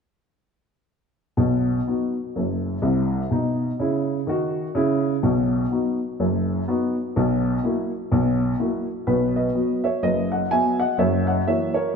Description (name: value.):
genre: jazz, stride piano.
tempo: 125 BPM.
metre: 4/4.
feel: swing 59% on 8ths.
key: B major.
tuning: A4 = 441 Hz.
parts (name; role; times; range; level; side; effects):
warm upright piano; solo; 1.4-12.0 s; F#1 to G#5; -20 LUFS; equal; none.
room: wet echo chamber reverb, RT60 2.1 s.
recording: heard from further back in the room.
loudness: -20 LUFS.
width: side -6 dB against mid.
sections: 1.4-9.1 A section; 9.1-12.0 B section.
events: none.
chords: 1.4 B; 3.3 E5/B; 5.2 B; 7.2 F#7/B; 9.1 B; 11.0 F#7.